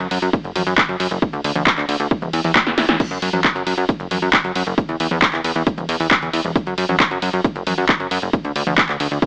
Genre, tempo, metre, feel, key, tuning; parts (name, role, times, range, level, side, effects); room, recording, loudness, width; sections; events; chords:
uplifting trance; 135 BPM; 4/4; straight; A4 = 439 Hz
plucky analog bass; bass; 0.0-9.2 s; E1 to F#2; -19 LUFS; equal; sidechain pumping
techno drum kit; drums; 0.0-9.3 s; crash cymbal, handclaps, hi-hat, ride cymbal, snare drum, toms; -18 LUFS; equal; overdrive, sidechain pumping on hats, sidechain pumping on cymbals, sidechain pumping on toms
electronic kick drum; drums; 0.3-9.3 s; -19 LUFS; equal; overdrive
light reverb, digital ambience; AM radio sound; -16 LUFS; side -36 dB against mid
0.0-3.0 A section; 3.0-9.3 A section
drop 0.0-3.0, 3.0-9.3; drum fill 2.6-3.0